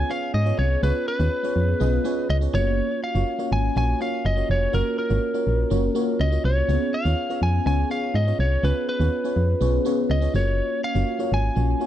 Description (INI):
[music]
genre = 1980s-style pop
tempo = 123 BPM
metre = 4/4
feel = straight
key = F# major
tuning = A4 = 442 Hz
[part]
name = lightly driven lead guitar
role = melody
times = 0.0-11.9 s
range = A#4 to G#5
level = -26 LUFS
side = left 1 dB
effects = tape echo
[part]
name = FM electric piano with soft pad layer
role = accompaniment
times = 0.0-11.9 s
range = A#3 to D#5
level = -26 LUFS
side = equal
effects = chorus, phaser
[part]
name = solid FM bass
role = bass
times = 0.0-11.7 s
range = E#1 to G#2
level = -21 LUFS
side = equal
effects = none
[sound]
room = little or no reverb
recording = dry, close 1970s-style studio recording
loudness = -20 LUFS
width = side -11 dB against mid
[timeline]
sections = 0.0-11.9 A section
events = none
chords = 0.0 C#7; 2.5 F#maj7; 6.7 C#7; 10.3 F#maj7